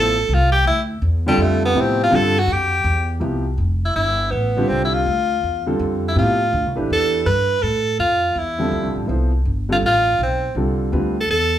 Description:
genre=jazz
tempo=164 BPM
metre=4/4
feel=swing 66% on 8ths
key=F lydian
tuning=A4 = 440 Hz
part: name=edgy tenor saxophone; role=melody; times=0.0-11.6 s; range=G3 to B4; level=-18 LUFS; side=equal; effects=none
part: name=warm concert grand piano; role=accompaniment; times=0.0-11.1 s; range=C3 to C5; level=-21 LUFS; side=equal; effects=none
part: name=upright bass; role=bass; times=0.0-11.6 s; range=F1 to A2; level=-21 LUFS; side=equal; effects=none
room=moderate large studio reverb, RT60 0.8 s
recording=band playing live in one room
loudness=-16 LUFS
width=side -11 dB against mid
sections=0.0-3.2 A section; 3.2-11.6 B section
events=tenor saxophone solo 0.0-3.2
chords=0.0 Fmaj9

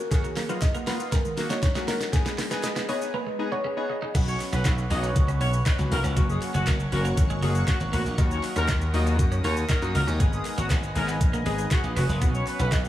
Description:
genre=dance-pop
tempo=119 BPM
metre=4/4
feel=straight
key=Eb minor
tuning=A4 = 441 Hz
part: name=soft round pluck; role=melody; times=0.0-4.1 s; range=Ab4 to Eb5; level=-32 LUFS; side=equal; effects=chorus, dub echo
part: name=thumb-piano-like synth pluck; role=arpeggios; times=0.0-4.1 s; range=Eb3 to Gb5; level=-36 LUFS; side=right 2 dB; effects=chorus, sidechain pumping, dub echo
part: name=warm analog keys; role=accompaniment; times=0.1-12.6 s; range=F#3 to Ab4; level=-33 LUFS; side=left 3 dB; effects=chorus, sidechain pumping, dub echo
part: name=smooth R&B drum kit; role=drums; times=0.1-12.9 s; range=crash cymbal, handclaps, hi-hat, kick drum, shaker, snare drum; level=-26 LUFS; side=equal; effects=none
part: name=twelve-string electric guitar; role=riff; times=0.2-12.8 s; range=Gb3 to Eb4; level=-36 LUFS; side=right 5 dB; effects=lush chorus, dub echo
part: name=group handclap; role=percussion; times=0.4-12.8 s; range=none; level=-44 LUFS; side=left 3 dB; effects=none
part: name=sweeping resonant pad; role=sustained chords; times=4.1-12.9 s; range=Bb4 to Eb6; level=-35 LUFS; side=right 1 dB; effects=chorus, phaser, sidechain pumping
part: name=glassy slap bass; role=bass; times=4.2-12.9 s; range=F1 to Gb2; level=-25 LUFS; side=equal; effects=sidechain pumping
part: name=clear horn section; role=melody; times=4.3-12.8 s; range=Gb3 to Eb5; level=-32 LUFS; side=left 1 dB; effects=sidechain pumping, dub echo
room=light reverb, digital ambience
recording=echo-heavy mix, small room ambience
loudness=-22 LUFS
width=side -13 dB against mid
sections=0.0-4.1 A section; 4.1-12.9 B section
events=build-up 0.0-4.1; drum fill 0.0-3.1; break 3.1-4.1; drop 4.1-12.9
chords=0.1 Ebm; 2.1 Abm; 4.1 Bsus2; 6.2 Gb; 8.2 Ebm; 10.2 Abm; 12.2 Bsus2

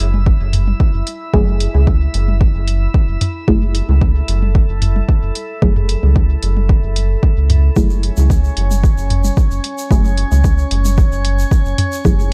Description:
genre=dub techno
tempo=112 BPM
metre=4/4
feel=straight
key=F# minor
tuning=A4 = 440 Hz
part: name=round analog bass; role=bass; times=0.0-12.3 s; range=F#1 to C#2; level=-17 LUFS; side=equal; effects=tube saturation, sidechain pumping
part: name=electronic hi-hat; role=drums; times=0.0-11.9 s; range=none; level=-27 LUFS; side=equal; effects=none
part: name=drifting glass-harmonics texture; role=texture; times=0.0-12.3 s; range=C#4 to E5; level=-29 LUFS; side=equal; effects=chorus, built-in reverb, sidechain pumping
part: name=electronic toms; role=percussion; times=0.1-11.9 s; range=none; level=-23 LUFS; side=equal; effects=sidechain pumping on toms, dub echo
part: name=electronic kick drum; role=drums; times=0.3-12.2 s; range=none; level=-16 LUFS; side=equal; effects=none
part: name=filtered dub chord stab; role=stabs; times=1.3-12.2 s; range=F#3 to G#4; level=-24 LUFS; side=equal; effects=phaser, sidechain pumping, dub echo
part: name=egg shaker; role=percussion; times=7.8-12.3 s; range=none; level=-35 LUFS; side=equal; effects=none
room=little or no reverb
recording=dark, warm production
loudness=-15 LUFS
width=mono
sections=0.0-12.3 A section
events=filter sweep on synth stab 0.0-12.3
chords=0.0 F#m9

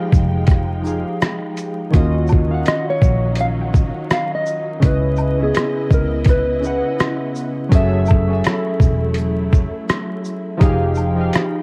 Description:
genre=lo-fi hip hop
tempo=83 BPM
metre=4/4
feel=swing 59% on 16ths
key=unclear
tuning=A4 = 440 Hz
part: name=warbly lo-fi synth keys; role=accompaniment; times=0.0-11.6 s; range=Db3 to Gb5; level=-24 LUFS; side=equal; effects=chorus, cassette tape, low-pass filter
part: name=warm studio string section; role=sustained chords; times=0.0-11.6 s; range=Db3 to G5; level=-31 LUFS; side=equal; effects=low-pass filter, cassette tape
part: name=vintage muted fingered electric bass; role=bass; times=0.1-11.3 s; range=Fb1 to Eb2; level=-22 LUFS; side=equal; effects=none
part: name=dusty soul sampler-style drum kit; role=drums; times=0.1-11.5 s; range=hi-hat, kick drum, rim click, shaker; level=-18 LUFS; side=equal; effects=vintage 12-bit sampler grit, cassette tape
part: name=tube shaker and woodblock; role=percussion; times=0.1-11.5 s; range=none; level=-38 LUFS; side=equal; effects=none
part: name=mellow electric guitar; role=melody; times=2.7-7.3 s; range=Ab4 to Gb5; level=-24 LUFS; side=equal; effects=low-pass filter, tape echo
room=little or no reverb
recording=home recording on cassette, vinyl crackle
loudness=-18 LUFS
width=mono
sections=0.0-11.6 A section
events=none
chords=0.0 Fm9; 1.9 Ebm9; 4.8 Dbm9; 7.7 Gbm9; 10.6 Fm9

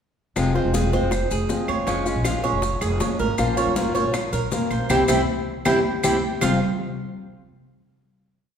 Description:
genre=latin, Cuban son and guajira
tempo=158 BPM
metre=4/4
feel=straight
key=F harmonic minor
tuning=A4 = 441 Hz
part: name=fingerpicked acoustic archtop guitar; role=accompaniment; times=0.4-6.6 s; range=F2 to C5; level=-25 LUFS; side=left 2 dB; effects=none
part: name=upright bass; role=bass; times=0.4-6.6 s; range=E1 to C2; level=-26 LUFS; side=equal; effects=none
part: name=bongos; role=percussion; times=0.4-6.5 s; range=none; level=-32 LUFS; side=left 4 dB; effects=none
part: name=claves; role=percussion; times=0.4-6.5 s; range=none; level=-33 LUFS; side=right 2 dB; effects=none
part: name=congas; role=percussion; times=0.4-6.5 s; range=none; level=-29 LUFS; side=equal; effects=none
part: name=maracas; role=percussion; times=0.4-6.5 s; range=none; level=-34 LUFS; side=left 5 dB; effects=none
part: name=Cuban tres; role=arpeggios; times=0.6-6.6 s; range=Db4 to F5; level=-24 LUFS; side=right 3 dB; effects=none
room=wet recital hall reverb, RT60 1.6 s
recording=recorded in a church or concert hall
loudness=-20 LUFS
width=side -8 dB against mid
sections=0.4-6.4 verse; 6.4-7.9 final chord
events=band accent 4.9-6.4; drum fill 5.3-6.4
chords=0.4 Fm; 1.9 Db6/F; 3.4 Bbmadd9; 4.9 C; 6.4 F5

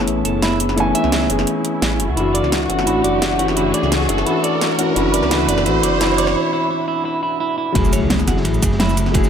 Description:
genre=liquid drum and bass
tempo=172 BPM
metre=4/4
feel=straight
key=F# minor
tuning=A4 = 438 Hz
part: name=dark grand piano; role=accompaniment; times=0.0-9.3 s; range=E3 to G#5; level=-20 LUFS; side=left 2 dB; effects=low-pass filter, dub echo
part: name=dark studio string section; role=sustained chords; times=0.0-9.3 s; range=D3 to F#4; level=-25 LUFS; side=left 1 dB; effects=sidechain pumping
part: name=dark detuned saw bass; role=bass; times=0.0-9.3 s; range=F#1 to C#2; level=-22 LUFS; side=right 1 dB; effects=none
part: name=riser and impact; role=sound effects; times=0.2-9.1 s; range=none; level=-25 LUFS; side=right 2 dB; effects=none
part: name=pop drum kit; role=drums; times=0.1-9.3 s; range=cabasa, hi-hat, snare drum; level=-22 LUFS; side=right 1 dB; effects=overdrive, high-pass filter on hats, high-pass filter on snare, high-pass filter on perc, high-pass filter on room
part: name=clean electric guitar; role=arpeggios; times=0.2-9.3 s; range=E4 to F#5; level=-23 LUFS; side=right 4 dB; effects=low-pass filter, dub echo
part: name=crunchy breakbeat drum kit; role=drums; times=7.8-9.3 s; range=ride cymbal, snare drum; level=-28 LUFS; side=equal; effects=high-pass filter on cymbals, high-pass filter on snare, high-pass filter on room
part: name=electronic kick drum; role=drums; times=7.8-9.2 s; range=none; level=-19 LUFS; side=right 1 dB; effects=overdrive
room=moderate digital room reverb, RT60 1.2 s, small room ambience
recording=none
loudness=-15 LUFS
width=side -8 dB against mid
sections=0.0-7.8 A section; 7.8-9.3 B section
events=build-up 0.0-7.8; riser 0.2-6.4; break 6.4-7.8; drop 7.8-9.3; impact 7.8-9.1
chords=0.0 Amaj7/F#; 2.0 Dmaj9/F#; 5.0 E7sus4/F#; 7.8 F#m9

